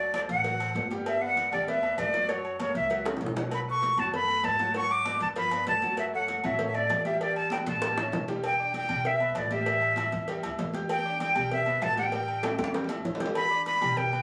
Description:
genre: latin, salsa.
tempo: 195 BPM.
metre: 4/4.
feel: straight.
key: unclear.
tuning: A4 = 441 Hz.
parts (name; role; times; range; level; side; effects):
breathy bright concert flute; melody; 0.0-14.2 s; C#5 to D6; -29 LUFS; equal; none.
bright concert grand piano; accompaniment; 0.0-14.2 s; F3 to G6; -39 LUFS; equal; none.
upright bass; bass; 0.0-14.2 s; E1 to A2; -40 LUFS; equal; none.
congas; percussion; 0.1-14.2 s; none; -42 LUFS; equal; none.
cowbell and bongos; percussion; 0.1-14.1 s; none; -40 LUFS; equal; none.
timbales and agogo bells; percussion; 0.1-14.2 s; none; -41 LUFS; equal; none.
room: moderate studio reverb, RT60 0.7 s.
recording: recorded on a phone in the room, club reverb.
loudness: -28 LUFS.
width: mono.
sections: 0.0-8.4 A section; 8.4-14.2 B section.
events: drum fill 3.1-3.5, 7.5-8.4, 12.4-13.4.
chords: 0.0 D7; 1.1 Gmaj7; 2.3 F#7; 3.5 Bsus2; 4.7 G#m7b5; 5.4 G9; 6.0 F#m7; 7.2 Em7; 7.8 A7; 8.4 Em7; 9.7 A5; 10.9 Em7; 12.1 A5; 13.4 Em7.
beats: 0.14 0.45 0.75 | 1.06 1.37 1.68 1.98 | 2.29 2.60 2.90 3.21 | 3.52 3.83 4.13 4.44 | 4.75 5.06 5.36 5.67 | 5.98 6.29 6.59 6.90 | 7.21 7.52 7.82 8.13 | 8.44 8.74 9.05 9.36 | 9.67 9.97 10.28 10.59 | 10.90 11.20 11.51 11.82 | 12.12 12.43 12.74 13.05 | 13.36 13.66 13.97.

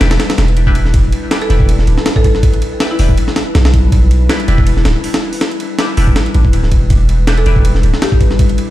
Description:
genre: drum and bass, jungle.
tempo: 161 BPM.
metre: 4/4.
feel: swing 55% on 16ths.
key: E minor.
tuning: A4 = 440 Hz.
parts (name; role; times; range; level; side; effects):
warbly tape-like pad; sustained chords; 0.0-8.7 s; G3 to B4; -21 LUFS; left 3 dB; chorus, built-in reverb, phaser.
band-passed chord stab; stabs; 0.0-8.7 s; D4 to B4; -25 LUFS; left 1 dB; phaser, dub echo.
long sustained 808-style bass; bass; 0.0-7.9 s; D1 to B1; -11 LUFS; equal; none.
breakbeat sampler-style drum kit; drums; 0.0-8.7 s; hi-hat, kick drum, ride cymbal, snare drum; -13 LUFS; equal; none.
buzzing marimba with medium hard mallets; melody; 1.4-3.3, 7.4-8.3 s; E4 to A4; -22 LUFS; left 1 dB; dub echo.
room: little or no reverb.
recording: played on a big sound system in a bare room, stone room reverb.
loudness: -10 LUFS.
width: side -15 dB against mid.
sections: 0.0-8.7 A section.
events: none.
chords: 0.0 Em7.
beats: 0.20 0.57 | 0.94 1.31 1.69 2.06 | 2.43 2.81 3.18 3.55 | 3.92 4.30 4.67 5.04 | 5.42 5.79 6.16 6.53 | 6.91 7.28 7.65 8.02 | 8.40.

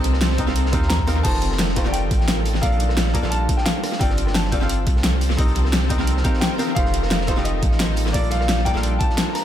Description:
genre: liquid drum and bass.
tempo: 174 BPM.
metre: 4/4.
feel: straight.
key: C dorian.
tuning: A4 = 439 Hz.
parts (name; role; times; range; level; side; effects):
archtop guitar, miked and amplified; accompaniment; 0.0-9.4 s; A3 to F5; -27 LUFS; left 1 dB; tape echo.
shimmering ambient pad; sustained chords; 0.0-9.4 s; Eb3 to Bb4; -28 LUFS; equal; chorus, built-in reverb, sidechain pumping.
warm sub bass; bass; 0.0-9.0 s; F1 to Eb2; -22 LUFS; equal; none.
crunchy breakbeat drum kit; drums; 0.0-9.4 s; hi-hat, snare drum; -33 LUFS; equal; high-pass filter on hats, high-pass filter on snare, high-pass filter on room.
pop drum kit; drums; 0.0-9.4 s; crash cymbal, hi-hat, rim click, snare drum; -24 LUFS; equal; analog delay.
electronic kick drum; drums; 0.4-9.1 s; none; -22 LUFS; equal; none.
warm concert grand piano; melody; 0.9-9.4 s; D5 to Bb5; -28 LUFS; left 1 dB; analog delay.
room: light reverb, studio reverb.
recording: echo-heavy mix.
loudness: -17 LUFS.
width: side -11 dB against mid.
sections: 0.0-9.4 A section.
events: none.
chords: 0.0 Cm7; 1.2 F9; 2.6 Bbmaj7; 4.0 G9sus4; 5.4 Cm7; 6.8 F9; 8.1 Bbmaj7.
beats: 0.21 0.56 0.90 | 1.25 1.59 1.94 2.28 | 2.63 2.97 3.32 3.66 | 4.01 4.35 4.70 5.04 | 5.39 5.73 6.08 6.42 | 6.77 7.11 7.46 7.80 | 8.14 8.49 8.84 9.18.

